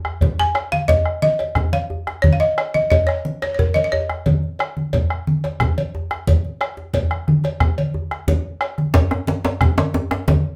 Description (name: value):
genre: west african traditional, West African drum ensemble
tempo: 119 BPM (dotted quarters)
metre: 12/8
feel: straight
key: unclear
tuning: A4 = 440 Hz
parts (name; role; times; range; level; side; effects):
- bombo; percussion; 0.0-10.4 s; none; -23 LUFS; equal; none
- djembe; percussion; 0.1-10.4 s; none; -28 LUFS; equal; none
- congas; percussion; 0.2-10.5 s; none; -23 LUFS; equal; none
- cowbell; percussion; 0.2-10.4 s; none; -31 LUFS; equal; none
- balafon; melody; 0.4-4.6 s; Bb4 to Ab5; -21 LUFS; equal; none
- djembe; percussion; 8.9-10.4 s; none; -23 LUFS; equal; none
room: wet studio reverb, RT60 0.5 s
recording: heard from further back in the room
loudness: -20 LUFS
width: mono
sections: 0.0-8.9 A section; 8.9-10.6 B section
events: drum fill 0.0-0.9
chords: none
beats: 0.38 | 0.89 1.39 1.90 2.40 | 2.91 3.42 3.92 4.42 | 4.93 5.43 5.93 6.44 | 6.94 7.44 7.94 8.44 | 8.95 9.45 9.95 10.45